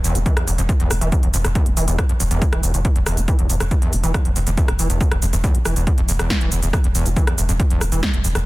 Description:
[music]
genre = driving peak-time techno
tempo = 139 BPM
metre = 4/4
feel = straight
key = unclear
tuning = A4 = 439 Hz
[part]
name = overdriven acid bass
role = riff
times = 0.0-8.4 s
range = E2 to E3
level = -24 LUFS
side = equal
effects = distortion, analog chorus, sidechain pumping, dub echo
[part]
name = saturated sub bass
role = bass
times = 0.0-8.5 s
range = E1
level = -21 LUFS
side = equal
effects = sidechain pumping, low-pass filter
[part]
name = techno drum kit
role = drums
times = 0.0-8.4 s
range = hi-hat, rim click, shaker, snare drum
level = -24 LUFS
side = equal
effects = soft clipping on snare
[part]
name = electronic kick drum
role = drums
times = 0.3-8.1 s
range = none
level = -18 LUFS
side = equal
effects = none
[sound]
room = light reverb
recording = dense, heavily limited modern master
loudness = -16 LUFS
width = side -20 dB against mid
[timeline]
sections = 0.0-8.5 A section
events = none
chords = none

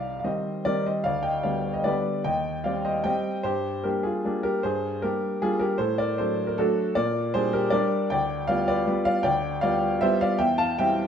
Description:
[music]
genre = classical, piano waltz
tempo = 154 BPM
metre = 3/4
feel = uneven beats, rubato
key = unclear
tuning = A4 = 440 Hz
[part]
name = warm upright piano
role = solo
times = 0.0-11.1 s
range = C2 to A5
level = -23 LUFS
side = equal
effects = none
[sound]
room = wet stone room reverb, RT60 1.2 s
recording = none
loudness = -23 LUFS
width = side -8 dB against mid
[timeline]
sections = 0.0-11.1 A section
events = none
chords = 0.0 Cm; 1.1 G/D; 2.3 Cm/Eb; 3.5 Gm; 5.8 D/A; 7.0 Gm/Bb; 8.1 G7/D; 10.4 C/E

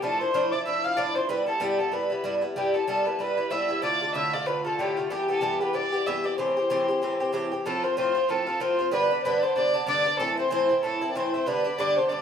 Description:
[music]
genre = celtic folk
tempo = 189 BPM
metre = 4/4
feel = swing 58% on 8ths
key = A minor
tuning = A4 = 440 Hz
[part]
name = dark fiddle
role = melody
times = 0.0-12.2 s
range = G4 to F5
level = -26 LUFS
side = left 1 dB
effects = plate reverb
[part]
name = mellow tin whistle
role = second line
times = 0.0-12.2 s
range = G5 to F6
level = -32 LUFS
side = equal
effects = none
[part]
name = Irish bouzouki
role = accompaniment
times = 0.0-12.2 s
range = G2 to G4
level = -27 LUFS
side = right 1 dB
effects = none
[sound]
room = wet studio reverb, RT60 0.6 s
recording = heard from further back in the room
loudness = -23 LUFS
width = side -7 dB against mid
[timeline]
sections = 0.0-7.7 A section; 7.7-12.2 B section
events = none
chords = 0.0 Dmadd9; 1.3 Em; 3.8 Dm; 5.1 Em; 6.4 Am7; 7.7 F; 8.9 G; 10.2 Am; 11.5 G

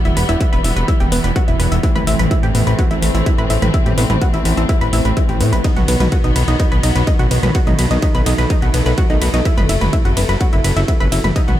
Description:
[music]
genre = melodic techno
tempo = 126 BPM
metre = 4/4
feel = straight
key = unclear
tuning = A4 = 439 Hz
[part]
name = rich symphonic string section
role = sustained chords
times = 0.0-11.6 s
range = C3 to C4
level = -23 LUFS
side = left 2 dB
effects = sidechain pumping
[part]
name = bowed-like drone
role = drone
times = 0.3-11.6 s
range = E2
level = -27 LUFS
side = right 4 dB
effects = none
[part]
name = analog pluck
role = arpeggios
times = 0.1-11.5 s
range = B3 to B5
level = -21 LUFS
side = equal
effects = chorus, sidechain pumping, dub echo
[part]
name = fat analog bass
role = bass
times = 0.1-11.6 s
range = E1 to A2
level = -17 LUFS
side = equal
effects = sidechain pumping
[part]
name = techno drum kit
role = drums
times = 0.1-11.6 s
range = hi-hat, ride cymbal, toms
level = -24 LUFS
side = equal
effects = small room ambience
[part]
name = electronic kick drum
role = drums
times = 0.4-11.5 s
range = none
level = -16 LUFS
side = equal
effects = distortion, small room ambience
[sound]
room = little or no reverb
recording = echo-heavy mix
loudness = -13 LUFS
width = side -12 dB against mid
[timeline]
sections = 0.0-11.6 A section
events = none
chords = 0.0 Em; 1.8 Am; 5.6 B; 9.5 F#dim

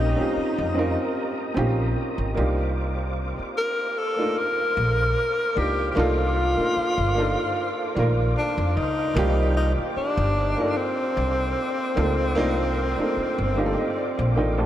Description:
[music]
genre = R&B, neo-soul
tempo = 75 BPM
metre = 4/4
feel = swing 54% on 16ths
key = unclear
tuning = A4 = 440 Hz
[part]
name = breathy tenor saxophone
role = melody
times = 0.0-14.7 s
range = C4 to Bb4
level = -25 LUFS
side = left 1 dB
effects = none
[part]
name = warm upright piano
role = accompaniment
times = 0.0-14.7 s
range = Eb3 to A5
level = -27 LUFS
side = right 1 dB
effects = none
[part]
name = tonewheel organ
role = sustained chords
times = 0.0-14.7 s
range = Bb4 to Eb6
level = -35 LUFS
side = equal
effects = slow rotary speaker, chorus vibrato
[part]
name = upright bass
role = bass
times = 0.0-14.7 s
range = G1 to F2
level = -25 LUFS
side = equal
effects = none
[sound]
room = wet huge ambient reverb, RT60 9.4 s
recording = dreamy mix soaked in reverb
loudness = -21 LUFS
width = side -12 dB against mid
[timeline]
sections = 0.0-14.7 A section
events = upright piano fill 13.2-14.7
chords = 0.0 Bbmadd9; 2.4 Cm11

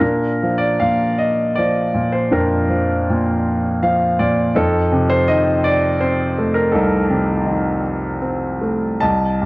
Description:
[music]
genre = classical, lyrical solo piano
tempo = 80 BPM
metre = 3/4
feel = uneven beats, rubato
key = Bb major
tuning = A4 = 440 Hz
[part]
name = clear grand piano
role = solo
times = 0.0-9.5 s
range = C2 to A5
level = -15 LUFS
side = equal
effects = none
[sound]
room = moderate small room reverb, RT60 0.6 s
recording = cassette tape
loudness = -15 LUFS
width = side -22 dB against mid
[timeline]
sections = 0.0-9.5 A section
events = grand piano fill 3.5-4.6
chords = 0.0 Bb; 4.6 F7

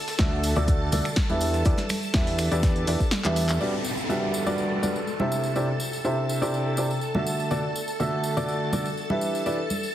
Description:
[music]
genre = piano house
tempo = 123 BPM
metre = 4/4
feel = straight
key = G major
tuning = A4 = 440 Hz
[part]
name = string machine, violins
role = sustained chords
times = 0.0-9.9 s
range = A4 to A5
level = -33 LUFS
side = left 1 dB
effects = ensemble chorus, sidechain pumping
[part]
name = breakbeat sampler-style drum kit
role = drums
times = 0.1-3.6 s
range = hi-hat, shaker, snare drum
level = -40 LUFS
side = left 1 dB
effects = none
[part]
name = punchy analog drum machine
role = drums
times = 0.1-3.7 s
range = crash cymbal, finger snaps, handclaps, hi-hat, snare drum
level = -30 LUFS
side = equal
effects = low-pass filter on hats, low-pass filter on snare, low-pass filter on cymbals, low-pass filter on room
[part]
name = tambourine and congas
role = percussion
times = 0.1-9.9 s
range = none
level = -33 LUFS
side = right 1 dB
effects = none
[part]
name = warm upright piano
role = riff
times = 0.2-9.6 s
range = C3 to E5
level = -26 LUFS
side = right 1 dB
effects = sidechain pumping, low-pass filter, ping-pong delay
[part]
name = fat analog bass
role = bass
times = 0.2-3.6 s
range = D2 to E2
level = -26 LUFS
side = equal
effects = sidechain pumping
[part]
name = electronic kick drum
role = drums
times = 0.2-3.1 s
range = none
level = -23 LUFS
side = equal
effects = none
[part]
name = downlifter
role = sound effects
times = 3.6-7.5 s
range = none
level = -34 LUFS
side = left 2 dB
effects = none
[sound]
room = moderate digital room reverb, RT60 1.0 s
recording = heavily compressed radio sound, multiband compression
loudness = -23 LUFS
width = side -12 dB against mid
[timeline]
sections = 0.0-3.6 A section; 3.6-9.9 B section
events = kick drops out 3.1-3.6; drum fill 3.2-3.6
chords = 0.0 D; 1.4 Em7; 3.6 Gmaj7; 5.3 Cadd9; 7.3 D; 9.2 Em7

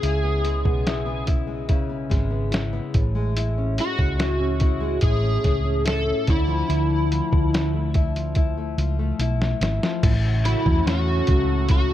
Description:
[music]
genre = indie pop, bedroom pop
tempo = 72 BPM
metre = 4/4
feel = straight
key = A major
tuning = A4 = 437 Hz
[part]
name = overdriven slide guitar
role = melody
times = 0.0-11.9 s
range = E4 to A4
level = -25 LUFS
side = equal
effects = analog chorus
[part]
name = nylon-string guitar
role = accompaniment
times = 0.0-11.9 s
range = A2 to E4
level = -28 LUFS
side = left 4 dB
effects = wide subtle chorus, warbly pitch drift
[part]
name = hollow-body short-scale fingered electric bass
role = bass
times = 0.0-11.9 s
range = G#1 to E2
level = -24 LUFS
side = equal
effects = none
[part]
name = lo-fi sampler-style drum kit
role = drums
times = 0.0-11.9 s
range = crash cymbal, hi-hat, kick drum, snare drum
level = -22 LUFS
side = equal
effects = none
[part]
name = lush unison pad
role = sustained chords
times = 10.2-11.9 s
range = C#3 to F#4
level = -31 LUFS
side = right 3 dB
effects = chorus
[sound]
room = digital ambience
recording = dark, warm production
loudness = -20 LUFS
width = side -12 dB against mid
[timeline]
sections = 0.0-10.0 A section; 10.0-11.9 B section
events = drum fill 8.4-10.0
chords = 0.0 C#m7; 2.9 Amaj7; 6.3 Dmadd9; 10.0 A6

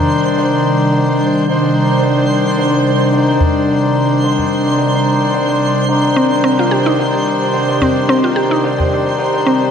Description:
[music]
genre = organic downtempo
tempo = 109 BPM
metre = 4/4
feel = swing 55% on 16ths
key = C minor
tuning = A4 = 441 Hz
[part]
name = pedal harmonium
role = accompaniment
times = 0.0-9.7 s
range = Eb3 to C5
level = -16 LUFS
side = left 2 dB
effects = digital delay
[part]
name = airy breathy pad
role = sustained chords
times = 0.0-9.7 s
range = C3 to G4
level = -15 LUFS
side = equal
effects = chorus
[part]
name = twinkling granular texture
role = texture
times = 0.0-9.7 s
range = C5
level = -22 LUFS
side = right 3 dB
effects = built-in reverb
[part]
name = electronic hi-hat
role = drums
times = 0.3-9.7 s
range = none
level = -31 LUFS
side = left 1 dB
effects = none
[part]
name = udu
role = percussion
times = 3.4-4.5, 7.8-8.9 s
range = none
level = -18 LUFS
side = equal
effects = none
[part]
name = mallet-like synth pluck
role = arpeggios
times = 6.2-9.6 s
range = C4 to G4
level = -16 LUFS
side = left 1 dB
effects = chorus, digital delay
[sound]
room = moderate lush hall reverb, RT60 1.9 s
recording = none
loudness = -12 LUFS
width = side -7 dB against mid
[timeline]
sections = 0.0-9.7 A section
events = filter sweep on analog synth pad 0.0-9.7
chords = 0.0 Cmadd9

